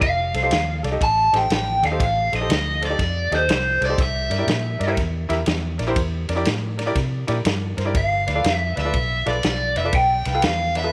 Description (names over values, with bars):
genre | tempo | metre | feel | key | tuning
electric blues shuffle | 121 BPM | 4/4 | swing 66% on 8ths | unclear | A4 = 438 Hz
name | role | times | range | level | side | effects
raw garage guitar | melody | 0.0-5.0, 8.0-10.9 s | C5 to A5 | -24 LUFS | equal | overdrive, phaser
bright upright piano | accompaniment | 0.0-10.9 s | Eb4 to F5 | -30 LUFS | equal | none
vintage muted fingered electric bass | bass | 0.0-10.9 s | F1 to C3 | -28 LUFS | equal | none
vintage drum kit | drums | 0.0-10.8 s | kick drum, ride cymbal, snare drum | -27 LUFS | equal | none
room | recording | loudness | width
light reverb, small room ambience | none | -21 LUFS | mono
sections
0.0-10.9 A section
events
none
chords
0.0 F7; 4.0 C7; 7.9 G7 (rootless)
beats
| 0.02 0.51 1.01 1.51 | 2.00 2.50 2.99 3.49 | 3.98 4.48 4.98 5.47 | 5.97 6.46 6.96 7.45 | 7.95 8.45 8.94 9.44 | 9.93 10.43